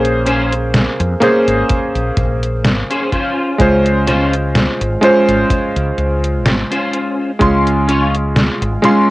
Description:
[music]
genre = vaporwave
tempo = 63 BPM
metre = 4/4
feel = swing 55% on 16ths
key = Db major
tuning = A4 = 440 Hz
[part]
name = warm electric grand piano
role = accompaniment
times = 0.0-9.1 s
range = Ab3 to C6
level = -14 LUFS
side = equal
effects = wide subtle chorus, cassette tape, analog delay
[part]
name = mellow fretless electric bass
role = bass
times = 0.0-8.8 s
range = Ab1 to F2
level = -18 LUFS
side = equal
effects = none
[part]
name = detuned 8-bit digital drum machine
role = drums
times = 0.0-9.0 s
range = hi-hat, snare drum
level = -16 LUFS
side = equal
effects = none
[part]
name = clean electric guitar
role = riff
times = 0.3-8.9 s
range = Db4 to Db5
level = -19 LUFS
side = left 1 dB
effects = ensemble chorus, cassette tape, analog delay
[part]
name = kick drum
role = drums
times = 1.7-7.6 s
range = none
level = -18 LUFS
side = equal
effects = none
[sound]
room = moderate booth ambience, RT60 0.3 s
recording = home recording on cassette, nothing above 10.7 kHz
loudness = -12 LUFS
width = side -19 dB against mid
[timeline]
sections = 0.0-9.1 A section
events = none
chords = 0.0 Bbm9; 3.1 Dbmaj7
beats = 0.74 1.70 2.65 | 3.60 4.55 5.50 6.46 | 7.41 8.36

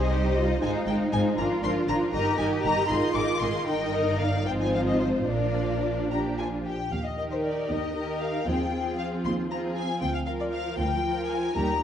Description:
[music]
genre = quick classical-period movement for string orchestra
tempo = 78 BPM (dotted quarters)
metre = 6/8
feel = rubato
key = Eb major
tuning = A4 = 438 Hz
[part]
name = warm symphonic violin section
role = melody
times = 0.0-11.8 s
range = C5 to D6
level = -31 LUFS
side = left 5 dB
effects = none
[part]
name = rich symphonic violin section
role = second line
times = 0.0-11.8 s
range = Eb4 to Eb5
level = -32 LUFS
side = left 1 dB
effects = none
[part]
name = warm symphonic viola section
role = accompaniment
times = 0.0-11.8 s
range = Eb3 to F4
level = -29 LUFS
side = right 1 dB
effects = none
[part]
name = warm symphonic cello section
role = bass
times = 0.0-11.8 s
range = D2 to Ab4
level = -32 LUFS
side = right 2 dB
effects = none
[part]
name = warm symphonic double bass section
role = bass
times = 0.0-11.8 s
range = G1 to Eb2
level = -31 LUFS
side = right 2 dB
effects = none
[sound]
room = moderate scoring stage reverb, RT60 1.7 s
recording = dark, warm production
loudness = -24 LUFS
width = side -9 dB against mid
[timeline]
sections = 0.0-6.9 A section; 6.9-11.8 B section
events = none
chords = 0.0 Cm; 0.6 Fm7/Ab; 1.4 Bb7/Ab; 2.1 Eb/G; 2.9 Ab5; 3.7 Eb/G; 4.5 Fm7/Ab; 5.3 Bb; 6.9 Eb; 8.5 Fm7/Eb; 10.0 Bb/D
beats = | 0.62 1.38 | 2.14 2.90 | 3.67 4.46 | 5.28 6.10 | 6.92 7.70 | 8.47 9.25 | 10.02 10.79 | 11.56

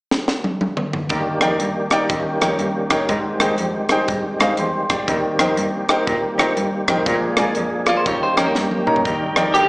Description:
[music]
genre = uptempo gospel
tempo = 121 BPM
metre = 4/4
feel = swing 63% on 8ths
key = Eb major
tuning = A4 = 442 Hz
[part]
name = crisp fusion drum kit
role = drums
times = 0.1-9.7 s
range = hi-hat, kick drum, rim click, snare drum, toms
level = -21 LUFS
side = equal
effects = none
[part]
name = warm concert grand piano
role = accompaniment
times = 1.1-9.7 s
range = Ab2 to C6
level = -20 LUFS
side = equal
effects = none
[part]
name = percussive tonewheel organ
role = sustained chords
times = 1.1-9.7 s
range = Eb3 to G5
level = -24 LUFS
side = equal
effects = overdrive, chorus vibrato, stopped rotary speaker
[part]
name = bright cello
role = bass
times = 1.1-9.6 s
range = D2 to Bb2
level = -24 LUFS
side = equal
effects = none
[part]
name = clean electric guitar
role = second line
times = 7.9-9.0 s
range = Bb3 to D5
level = -22 LUFS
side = right 1 dB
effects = none
[part]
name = clean electric guitar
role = melody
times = 9.5-9.7 s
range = G4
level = -13 LUFS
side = equal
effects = analog chorus
[sound]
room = moderate digital room reverb, RT60 1.0 s, small room ambience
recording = live gig heard through the venue's PA, recital hall reverb, small speaker sound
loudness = -17 LUFS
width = side -25 dB against mid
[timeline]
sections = 0.0-1.1 A section; 1.1-9.0 B section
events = drum fill 0.1-1.1, 8.6-9.0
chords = 0.0 N.C.; 1.1 Ebmaj7; 2.1 Eb7; 3.1 Abmaj7; 5.1 Eb6; 7.1 Bb7; 8.1 Eb7; 9.0 Ebmaj7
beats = 0.11 0.61 | 1.11 1.60 2.10 2.60 | 3.09 3.59 4.09 4.58 | 5.08 5.58 6.07 6.57 | 7.07 7.56 8.06 8.55 | 9.05 9.54

